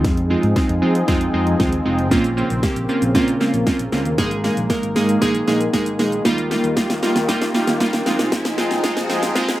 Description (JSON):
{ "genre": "dance-pop", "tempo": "116 BPM", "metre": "4/4", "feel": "straight", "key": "unclear", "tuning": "A4 = 440 Hz", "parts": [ { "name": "glassy digital keys", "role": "accompaniment", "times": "0.0-9.5 s", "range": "G3 to Bb4", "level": "-20 LUFS", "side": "right 2 dB", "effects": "chorus, sidechain pumping" }, { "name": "sweeping resonant pad", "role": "sustained chords", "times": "0.0-9.6 s", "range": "Db3 to Ab4", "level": "-23 LUFS", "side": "left 1 dB", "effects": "chorus, sidechain pumping" }, { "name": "fingered electric bass", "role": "bass", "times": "0.0-9.6 s", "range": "F1 to F3", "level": "-24 LUFS", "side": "equal", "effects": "sidechain pumping" }, { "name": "pop drum kit", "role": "drums", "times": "0.0-9.6 s", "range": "hi-hat, kick drum, shaker, snare drum", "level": "-22 LUFS", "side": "equal", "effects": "none" }, { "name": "riser", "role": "sound effects", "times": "6.2-9.6 s", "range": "none", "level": "-31 LUFS", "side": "right 1 dB", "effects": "none" } ], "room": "wet small room reverb, RT60 0.5 s", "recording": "rough home demo mix, high-pass filter", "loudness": "-16 LUFS", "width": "side -15 dB against mid", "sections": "0.0-9.6 A section", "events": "build-up 0.0-9.6; drum fill 0.0-9.6; filter sweep 0.0-9.6", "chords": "0.0 Fm7; 2.1 Bbmadd9; 4.2 Absus2; 6.3 Ebadd9; 8.1 Fm7" }